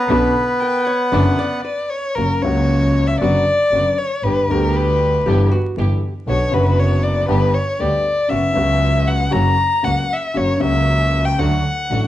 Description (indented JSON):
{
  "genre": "tango",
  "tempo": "117 BPM",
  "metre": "4/4",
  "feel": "rubato",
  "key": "B harmonic minor",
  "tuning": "A4 = 440 Hz",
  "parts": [
    { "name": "bandoneon", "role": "melody", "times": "0.0-1.6 s", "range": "B3 to B4", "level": "-18 LUFS", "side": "equal", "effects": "plate reverb" },
    { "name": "warm violin", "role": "second line", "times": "0.0-12.1 s", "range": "A#4 to B5", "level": "-19 LUFS", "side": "left 2 dB", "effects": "none" },
    { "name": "warm baby grand piano", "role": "accompaniment", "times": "0.1-12.1 s", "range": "F#1 to G4", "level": "-20 LUFS", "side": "left 2 dB", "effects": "none" },
    { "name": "rich chamber string section", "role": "stabs", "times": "0.1-12.1 s", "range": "A3 to G4", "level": "-28 LUFS", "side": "right 2 dB", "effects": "none" },
    { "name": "warm double bass", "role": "bass", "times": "0.1-12.1 s", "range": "F#1 to D2", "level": "-19 LUFS", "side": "right 1 dB", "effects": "none" },
    { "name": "archtop guitar, miked and amplified", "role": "second line", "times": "0.6-2.1, 5.3-6.1 s", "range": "F#4 to D5", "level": "-28 LUFS", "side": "right 1 dB", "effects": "none" }
  ],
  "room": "moderate large studio reverb, RT60 0.8 s",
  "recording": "dark, warm production, vinyl crackle, nothing above 10.8 kHz",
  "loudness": "-15 LUFS",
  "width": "side -13 dB against mid",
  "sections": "0.0-2.2 A section; 2.2-12.1 B section",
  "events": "violin solo 2.2-12.1",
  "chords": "0.1 Bmadd9; 2.2 F#; 3.2 Bm/F#; 4.2 G; 5.2 Em/G; 6.3 Bm; 7.3 G; 8.3 F#sus4; 9.3 F#; 11.4 D",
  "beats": "| 0.10 0.61 1.13 1.65 | 2.17 2.68 3.20 3.71 | 4.22 4.74 5.25 5.76 | 6.27 6.78 7.29 7.80 | 8.30 8.81 9.32 9.84 | 10.35 10.87 11.38 11.89"
}